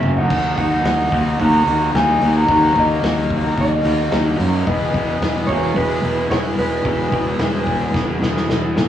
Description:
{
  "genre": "indie rock",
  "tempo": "110 BPM",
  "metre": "4/4",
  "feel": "straight",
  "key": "unclear",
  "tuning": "A4 = 436 Hz",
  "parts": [
    { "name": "electric guitar through a small old amp", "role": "melody", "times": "0.0-8.5 s", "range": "B4 to A#5", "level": "-21 LUFS", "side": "equal", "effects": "cassette tape, tape echo" },
    { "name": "growling trumpet", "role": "second line", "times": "0.0-8.5 s", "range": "G#3 to F#4", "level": "-30 LUFS", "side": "left 2 dB", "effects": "none" },
    { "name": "raw garage guitar", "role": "riff", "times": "0.0-8.9 s", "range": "E3 to G#4", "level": "-26 LUFS", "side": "left 5 dB", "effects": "overdrive, cassette tape" },
    { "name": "raw garage guitar", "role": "riff", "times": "0.0-8.9 s", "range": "E3 to G#4", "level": "-26 LUFS", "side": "right 4 dB", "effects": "overdrive, wide subtle chorus, cassette tape" },
    { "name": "fuzz fingered electric bass", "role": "bass", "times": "0.0-8.9 s", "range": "E1 to F#2", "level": "-19 LUFS", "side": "equal", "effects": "overdrive" },
    { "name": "loose indie drum kit", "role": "drums", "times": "0.0-8.9 s", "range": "crash cymbal, hi-hat, kick drum, snare drum, toms", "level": "-25 LUFS", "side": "equal", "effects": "cassette tape" }
  ],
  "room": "light reverb",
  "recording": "home recording on cassette, studio reverb",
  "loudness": "-15 LUFS",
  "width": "side -10 dB against mid",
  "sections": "0.0-8.9 A section",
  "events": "drum fill 0.0-0.3, 7.9-8.9",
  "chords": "0.3 D#m; 4.7 E"
}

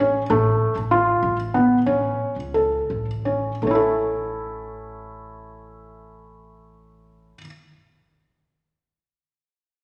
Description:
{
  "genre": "contemporary instrumental, contemporary",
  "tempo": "155-198 BPM (eighths)",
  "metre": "5/8",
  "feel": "straight",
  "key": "A major",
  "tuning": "A4 = 440 Hz",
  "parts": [
    { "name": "felt-muted upright piano", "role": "arpeggios", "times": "0.0-7.5 s", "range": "A3 to A4", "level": "-23 LUFS", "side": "equal", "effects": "none" },
    { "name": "upright bass", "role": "bass", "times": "0.0-7.3 s", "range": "A1 to C#2", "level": "-31 LUFS", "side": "equal", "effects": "none" }
  ],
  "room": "wet recital hall reverb, RT60 1.6 s",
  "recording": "none",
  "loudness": "-21 LUFS",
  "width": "mono",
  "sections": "0.0-3.6 A section; 3.6-7.5 B section",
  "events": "slowing down 0.3-3.6",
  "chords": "0.3 Asus2; 1.9 A"
}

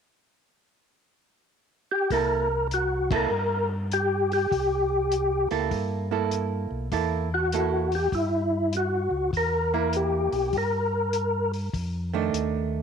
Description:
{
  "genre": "soul jazz organ trio",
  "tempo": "100 BPM",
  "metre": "4/4",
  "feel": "swing 66% on 8ths",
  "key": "C mixolydian",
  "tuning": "A4 = 440 Hz",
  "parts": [
    { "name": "percussive tonewheel organ", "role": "melody", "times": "1.9-11.5 s", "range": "E4 to Bb4", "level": "-24 LUFS", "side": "left 1 dB", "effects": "chorus vibrato, fast rotary speaker" },
    { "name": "archtop guitar, miked and amplified", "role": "accompaniment", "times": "2.1-12.8 s", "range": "Eb3 to A4", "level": "-28 LUFS", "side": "right 10 dB", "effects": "none" },
    { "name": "mellow tonewheel organ", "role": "bass", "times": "2.1-12.8 s", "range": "B1 to G2", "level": "-30 LUFS", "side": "equal", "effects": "slow rotary speaker" },
    { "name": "warm soul drum kit", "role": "drums", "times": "2.1-12.5 s", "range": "hi-hat, kick drum, ride cymbal", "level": "-34 LUFS", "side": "left 4 dB", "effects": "none" }
  ],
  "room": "moderate echo chamber reverb, RT60 1.7 s, small room ambience",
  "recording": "1960s-style stereo",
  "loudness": "-23 LUFS",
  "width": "side -7 dB against mid",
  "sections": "0.0-2.1 A section; 2.1-12.8 B section",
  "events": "band accent 3.0-3.3",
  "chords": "0.0 N.C.; 2.1 C6; 11.7 F6"
}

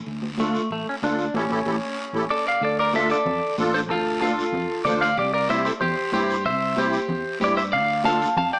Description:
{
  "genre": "latin, cumbia",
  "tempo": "188 BPM",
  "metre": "4/4",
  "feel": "straight",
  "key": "D minor",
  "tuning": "A4 = 441 Hz",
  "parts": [
    { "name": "fingered electric bass", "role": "bass", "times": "0.1-8.5 s", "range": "A1 to G2", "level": "-30 LUFS", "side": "equal", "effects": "none" },
    { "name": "guiro", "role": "percussion", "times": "0.1-8.6 s", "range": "none", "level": "-37 LUFS", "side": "equal", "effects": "none" },
    { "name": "congas", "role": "percussion", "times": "0.2-8.5 s", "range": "none", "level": "-31 LUFS", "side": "equal", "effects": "none" },
    { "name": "clean electric guitar", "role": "melody", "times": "0.4-8.6 s", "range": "A3 to A5", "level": "-23 LUFS", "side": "equal", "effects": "spring reverb" },
    { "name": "musette accordion", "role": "accompaniment", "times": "0.4-8.3 s", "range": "C4 to C5", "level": "-27 LUFS", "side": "equal", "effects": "none" },
    { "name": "electric guitar at the edge of break-up", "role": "second line", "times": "2.3-8.6 s", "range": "F4 to F5", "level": "-27 LUFS", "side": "equal", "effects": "none" }
  ],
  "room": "light reverb",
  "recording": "small speaker sound",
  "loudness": "-20 LUFS",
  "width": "side -37 dB against mid",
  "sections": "0.0-2.6 A section; 2.6-8.6 B section",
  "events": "band accent 1.3-2.6",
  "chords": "0.1 Dm; 1.3 A7; 2.6 Dm; 5.2 C; 7.7 Dm"
}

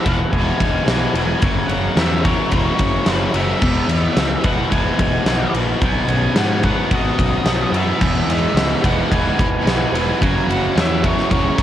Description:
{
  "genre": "rock, shoegaze and dream pop",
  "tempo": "109 BPM",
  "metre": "4/4",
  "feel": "straight",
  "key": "E lydian",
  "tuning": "A4 = 442 Hz",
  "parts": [
    { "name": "octave-fuzz lead guitar", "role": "melody", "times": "0.0-11.6 s", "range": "C#5 to G#5", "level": "-25 LUFS", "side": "equal", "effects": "distortion, cassette tape, tape echo" },
    { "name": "crunchy overdriven guitar", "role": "riff", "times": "0.0-11.6 s", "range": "E2 to B4", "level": "-25 LUFS", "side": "left 8 dB", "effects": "lush chorus, cassette tape" },
    { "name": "distorted electric guitar", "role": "riff", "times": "0.0-11.6 s", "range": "E2 to B3", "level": "-22 LUFS", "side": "equal", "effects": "overdrive, cassette tape" },
    { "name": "fuzz fingered electric bass", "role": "bass", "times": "0.1-11.6 s", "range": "E1 to G#2", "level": "-22 LUFS", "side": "equal", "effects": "overdrive, transformer saturation" },
    { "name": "huge arena drum kit", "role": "drums", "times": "0.1-11.6 s", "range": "crash cymbal, kick drum, ride cymbal, snare drum", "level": "-19 LUFS", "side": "equal", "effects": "cassette tape" },
    { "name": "biting overdriven guitar", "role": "riff", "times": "8.0-11.6 s", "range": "E2 to B4", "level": "-24 LUFS", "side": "right 8 dB", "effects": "reverse reverb, cassette tape" }
  ],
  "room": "little or no reverb",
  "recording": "home recording on cassette",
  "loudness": "-15 LUFS",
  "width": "side -11 dB against mid",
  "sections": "0.0-11.6 A section",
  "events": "none",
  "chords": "0.0 Emaj7; 1.4 F#7; 3.6 Emaj7; 5.8 Bmaj9; 8.0 Emaj7; 10.2 F#7"
}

